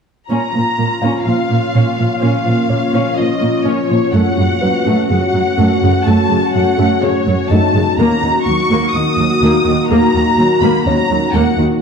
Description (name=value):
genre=cinematic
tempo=125 BPM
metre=4/4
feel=straight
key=Bb phrygian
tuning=A4 = 440 Hz
part: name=warm symphonic violin section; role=melody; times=0.3-11.6 s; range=Db5 to Eb6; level=-18 LUFS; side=left 3 dB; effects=none
part: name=dark symphonic viola section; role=accompaniment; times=0.3-11.8 s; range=Db3 to Gb4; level=-17 LUFS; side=right 1 dB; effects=none
part: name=deep dark ambient pad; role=sustained chords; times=0.9-11.8 s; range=A3 to Db5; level=-19 LUFS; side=left 2 dB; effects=chorus, built-in reverb
part: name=dark symphonic cello section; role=bass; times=0.3-11.7 s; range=Eb2 to Bb2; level=-17 LUFS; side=right 2 dB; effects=none
part: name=dark grand piano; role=texture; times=1.0-11.8 s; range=Db4 to F5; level=-26 LUFS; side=left 4 dB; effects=none
room=moderate scoring stage reverb, RT60 1.7 s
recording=dark, warm production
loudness=-12 LUFS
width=side -6 dB against mid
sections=0.3-11.8 A section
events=none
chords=0.3 Bbm; 4.1 Gbm; 8.0 Ebm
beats=| 0.30 0.78 1.26 1.74 | 2.22 2.70 3.18 3.66 | 4.14 4.62 5.10 5.58 | 6.06 6.54 7.02 7.50 | 7.98 8.46 8.94 9.42 | 9.90 10.38 10.86 11.34